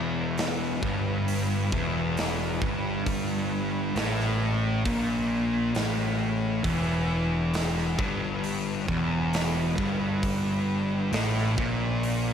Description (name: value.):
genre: stoner and doom metal.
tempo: 67 BPM.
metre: 4/4.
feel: straight.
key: unclear.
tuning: A4 = 441 Hz.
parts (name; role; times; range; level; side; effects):
fuzz guitar; riff; 0.0-12.3 s; E2 to A#2; -26 LUFS; equal; distortion.
fuzz picked electric bass; bass; 0.0-12.3 s; E1 to A#1; -32 LUFS; equal; overdrive.
big rock drum kit; drums; 0.4-12.2 s; hi-hat, kick drum, snare drum; -33 LUFS; equal; none.
room: light reverb, small room ambience.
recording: faint mains hum.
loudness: -24 LUFS.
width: side -8 dB against mid.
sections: 0.0-12.3 A section.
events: none.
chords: 0.0 Em.